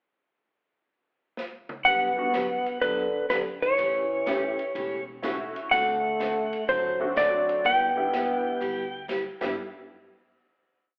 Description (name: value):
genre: country, western swing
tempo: 124 BPM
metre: 4/4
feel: swing 67% on 8ths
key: G major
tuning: A4 = 438 Hz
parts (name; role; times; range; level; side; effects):
- vintage drum kit; drums; 1.4-9.5 s; crash cymbal, hi-hat, kick drum, ride cymbal, snare drum, toms; -42 LUFS; equal; none
- picked steel-string acoustic guitar; accompaniment; 1.8-9.5 s; C#3 to A4; -37 LUFS; equal; none
- clean lap steel guitar; melody; 1.9-9.1 s; B4 to G5; -27 LUFS; equal; none
- mellow trombone; second line; 1.9-9.1 s; D3 to B3; -33 LUFS; equal; none
- upright bass; bass; 1.9-9.6 s; E1 to D2; -49 LUFS; equal; none
- honky-tonk upright piano; accompaniment; 2.2-9.6 s; G3 to G4; -37 LUFS; equal; none
room: wet large studio reverb, RT60 1.3 s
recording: band playing live in one room, telephone sound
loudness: -26 LUFS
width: mono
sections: 0.0-1.9 pickup bar; 1.9-9.6 A section; 9.6-11.0 final hit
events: drum fill 1.4-1.9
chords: 0.0 N.C.; 1.9 Gmaj7; 3.8 A7; 5.7 D7; 7.6 G6; 9.6 N.C.